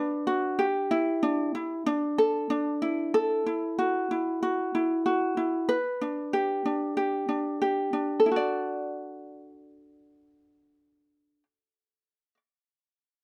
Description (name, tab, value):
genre	pop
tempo	94 BPM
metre	4/4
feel	straight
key	D major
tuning	A4 = 440 Hz
part	ukulele	solo	0.0-12.4 s	D4 to D5	-28 LUFS	equal	none
room	light reverb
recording	none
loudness	-28 LUFS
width	mono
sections	0.0-3.1 A section; 3.1-8.3 B section; 8.3-10.8 C section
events	none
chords	0.0 Gmaj7; 0.6 A7sus4; 3.1 Esus24; 5.7 G; 8.3 D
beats	| 0.59 1.23 1.87 2.50 | 3.14 3.78 4.42 5.06 | 5.69 6.33 6.97 7.61 | 8.25 8.89 9.53 10.17